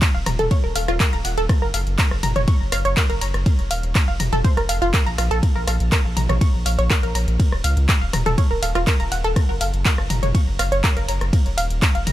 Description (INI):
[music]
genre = melodic techno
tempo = 122 BPM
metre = 4/4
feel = straight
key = unclear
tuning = A4 = 439 Hz
[part]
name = deep house drum kit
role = drums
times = 0.0-12.1 s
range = handclaps, hi-hat, ride cymbal, rim click, toms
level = -24 LUFS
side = left 1 dB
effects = none
[part]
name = electronic kick drum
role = drums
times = 0.0-11.9 s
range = none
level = -18 LUFS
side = equal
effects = none
[part]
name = wide unison pluck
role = arpeggios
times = 0.1-12.1 s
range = F4 to Bb6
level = -24 LUFS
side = right 1 dB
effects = sidechain pumping, ping-pong delay
[part]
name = round analog bass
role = bass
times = 0.1-12.1 s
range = Eb1 to Db2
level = -22 LUFS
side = equal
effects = sidechain pumping
[sound]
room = little or no reverb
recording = none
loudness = -17 LUFS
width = side -14 dB against mid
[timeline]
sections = 0.0-12.1 A section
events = none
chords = 0.0 Eb5; 1.5 Gbmaj7; 3.5 Fsus4; 5.4 Bbm; 7.4 Eb7(no3); 9.4 Gbmaj7; 11.3 N.C.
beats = 0.02 0.51 1.00 | 1.49 1.99 2.48 2.97 | 3.46 3.95 4.45 4.94 | 5.43 5.92 6.41 6.90 | 7.40 7.89 8.38 8.87 | 9.36 9.86 10.35 10.84 | 11.33 11.82